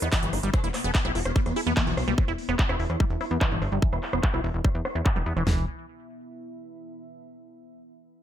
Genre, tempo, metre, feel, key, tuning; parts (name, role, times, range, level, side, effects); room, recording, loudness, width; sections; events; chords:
psychedelic trance; 146 BPM; 4/4; straight; E minor; A4 = 440 Hz
swarming rave lead; melody; 0.0-2.1 s; B3 to A4; -32 LUFS; left 2 dB; chorus, phaser, sidechain pumping, ping-pong delay
liquid acid bass; riff; 0.0-5.7 s; E3 to E4; -32 LUFS; right 1 dB; phaser, auto-pan, sidechain pumping, ping-pong delay
plucky analog bass; bass; 0.0-5.7 s; E1 to E2; -28 LUFS; equal
big-room dance drum kit; drums; 0.0-5.4 s; handclaps, hi-hat, rim click; -31 LUFS; equal; overdrive, low-pass filter on hats, low-pass filter on cymbals, low-pass filter on snare, low-pass filter on toms, low-pass filter on room
deep dark ambient pad; texture; 0.8-7.1 s; B3 to B5; -40 LUFS; equal; chorus, built-in reverb, sidechain pumping
big-room dance drum kit; drums; 0.1-5.6 s; kick drum, snare drum, toms; -25 LUFS; equal
little or no reverb; -23 LUFS; side -11 dB against mid
0.0-5.5 A section; 5.5-7.1 B section
fade-out on ambient pad 0.0-5.5; filter sweep on drum 0.0-5.5; filter sweep on acid bass 0.0-5.5
0.0 E5